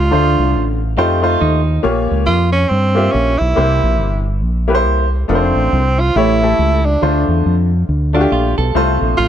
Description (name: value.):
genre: gospel.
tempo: 139 BPM.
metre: 4/4.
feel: swing 60% on 8ths.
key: F major.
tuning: A4 = 440 Hz.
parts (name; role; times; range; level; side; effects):
breathy tenor saxophone; melody; 0.0-9.3 s; C4 to E#4; -17 LUFS; right 3 dB; none.
fingered electric bass; bass; 0.0-9.3 s; F1 to G2; -15 LUFS; equal; none.
bright grand piano; accompaniment; 0.1-9.3 s; A2 to E5; -17 LUFS; left 2 dB; none.
clean electric guitar; second line; 1.0-1.8, 8.1-9.0 s; D4 to A4; -22 LUFS; right 5 dB; none.
room: light reverb.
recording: none.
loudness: -12 LUFS.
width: side -10 dB against mid.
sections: 0.0-9.3 A section.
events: none.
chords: 0.1 Dm7; 1.0 F7; 1.8 Bbm6; 3.6 C7; 5.3 F6; 6.2 A7; 7.0 Dm7; 8.7 F.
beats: | 0.12 0.55 0.98 1.42 | 1.85 2.28 2.71 3.14 | 3.57 4.00 4.43 4.87 | 5.30 5.73 6.16 6.59 | 7.02 7.45 7.89 8.32 | 8.75 9.18.